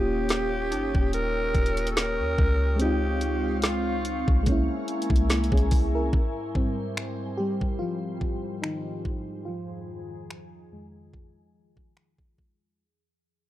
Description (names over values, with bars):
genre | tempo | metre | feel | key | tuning
contemporary R&B | 72 BPM | 4/4 | swing 54% on 16ths | F minor | A4 = 440 Hz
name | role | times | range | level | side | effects
raspy alto saxophone | melody | 0.0-4.4 s | F4 to Bb4 | -29 LUFS | equal | none
mellow FM electric piano | accompaniment | 0.0-12.8 s | F2 to Bb4 | -30 LUFS | equal | chorus, low-pass filter
glassy FM pad | sustained chords | 0.0-12.8 s | F2 to Eb6 | -36 LUFS | equal | ensemble chorus, built-in reverb, low-pass filter
clean 808-style bass | bass | 0.0-6.1 s | Eb1 to Eb2 | -27 LUFS | equal | none
smooth R&B drum kit | drums | 0.3-12.6 s | finger snaps, hi-hat, kick drum, snare drum | -25 LUFS | equal | none
synth chime | texture | 0.7-2.0 s | Eb4 | -40 LUFS | equal | none
room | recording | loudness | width
little or no reverb | dry, gritty hardware recording | -24 LUFS | side -14 dB against mid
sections
0.0-6.1 A section; 6.1-12.8 B section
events
fade-out 6.1-12.8; FM electric piano solo 6.1-12.8; filter sweep 6.1-12.8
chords
0.0 Eb7; 2.8 Dbmaj7; 4.5 C7b9b13; 6.1 Abmaj7; 9.5 Fm7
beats
0.30 1.13 1.96 | 2.80 3.63 4.46 5.30 | 6.13 6.96 7.80 8.63 | 9.46 10.30 11.13 11.96